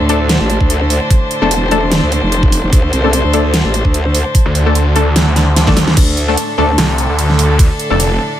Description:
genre	heavy wobble dubstep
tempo	148 BPM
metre	4/4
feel	swing 54% on 16ths, half-time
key	unclear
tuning	A4 = 440 Hz
part	rich chamber string section	sustained chords	0.0-8.4 s	A2 to C5	-19 LUFS	equal	sidechain pumping
part	growl bass	bass	0.0-6.8 s	E1 to D2	-14 LUFS	equal	chorus, overdrive
part	orchestra-hit-like synth stab	stabs	0.1-8.0 s	A3 to A4	-19 LUFS	left 3 dB	built-in reverb, ping-pong delay
part	dubstep drum kit	drums	0.1-8.1 s	crash cymbal, hi-hat, ride cymbal, snare drum	-17 LUFS	right 1 dB	overdrive
part	electronic kick drum	drums	0.6-7.7 s	none	-11 LUFS	equal	none
part	snarling distorted saw bass	bass	4.5-8.2 s	F1 to D2	-13 LUFS	equal	overdrive
room	little or no reverb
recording	none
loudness	-10 LUFS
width	side -12 dB against mid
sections	0.0-6.0 A section; 6.0-8.4 A section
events	drop 0.0-6.0, 6.0-8.4; drum fill 5.4-6.0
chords	0.0 D5

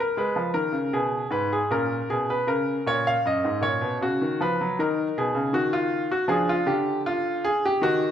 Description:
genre	classical, baroque-style suite movement for grand piano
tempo	79 BPM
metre	4/4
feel	rubato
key	F# major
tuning	A4 = 440 Hz
part	bright grand piano	solo	0.0-8.1 s	F#2 to E#5	-22 LUFS	equal	none
room	moderate recital hall reverb, RT60 1.3 s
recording	none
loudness	-22 LUFS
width	side -9 dB against mid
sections	0.0-8.1 A section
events	none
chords	0.2 Fdim; 1.7 F#/A#; 4.8 Bmaj9#11 (rootless); 6.3 Dmadd11

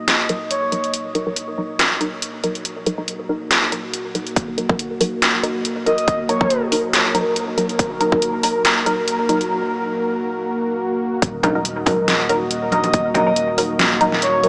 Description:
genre	deep dubstep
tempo	140 BPM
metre	4/4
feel	swing 54% on 16ths, half-time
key	Eb minor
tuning	A4 = 440 Hz
part	dark analog pad	sustained chords	0.0-14.5 s	Bb3 to Eb5	-24 LUFS	equal	chorus
part	filtered dub chord stab	stabs	0.0-14.5 s	Gb3 to Bb4	-22 LUFS	equal	phaser, wide subtle chorus, dub echo
part	dubstep drum kit	drums	0.1-14.5 s	hi-hat, snare drum	-19 LUFS	equal	overdrive, high-pass filter on hats, high-pass filter on snare, high-pass filter on room
part	breathy flute-like synth lead	melody	0.5-0.9, 5.9-6.6, 12.7-14.5 s	Db5 to Eb5	-23 LUFS	equal	tremolo, lush chorus, dub echo
part	electronic kick drum	drums	4.4-8.2, 11.2-13.0 s	none	-20 LUFS	equal	overdrive
part	soft dub sub bass	bass	11.2-14.5 s	Eb1	-31 LUFS	equal	tube saturation
part	congas	percussion	11.4-13.2 s	none	-25 LUFS	equal	dub echo
room	wet huge ambient reverb, RT60 6.7 s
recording	small speaker sound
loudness	-16 LUFS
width	side -36 dB against mid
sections	0.0-11.2 A section; 11.2-14.5 B section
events	build-up 0.0-11.2; filter sweep on synth stab 0.0-11.2; filter sweep on analog synth pad 0.0-11.2; break 9.5-11.2; drop 11.2-14.5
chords	0.0 Ebm

